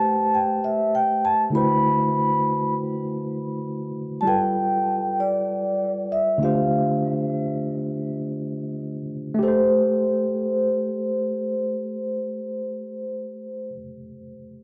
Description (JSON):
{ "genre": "soul", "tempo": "84-99 BPM", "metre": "4/4", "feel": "swing 54% on 16ths", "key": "A minor", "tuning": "A4 = 436 Hz", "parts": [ { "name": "vibraphone with soft mallets", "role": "melody", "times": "0.0-13.7 s", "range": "C5 to B5", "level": "-25 LUFS", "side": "equal", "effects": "analog delay" }, { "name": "tine electric piano", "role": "accompaniment", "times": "0.0-14.6 s", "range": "D3 to C5", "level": "-28 LUFS", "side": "equal", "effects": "overdrive" } ], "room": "light reverb, studio ambience", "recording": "dark, warm production", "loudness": "-24 LUFS", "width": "mono", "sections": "0.0-9.4 A section; 9.4-12.3 B section", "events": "slowing down 4.3-9.4", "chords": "0.0 Am9; 1.5 D13; 4.3 G9; 6.4 Dm7; 9.4 Am7" }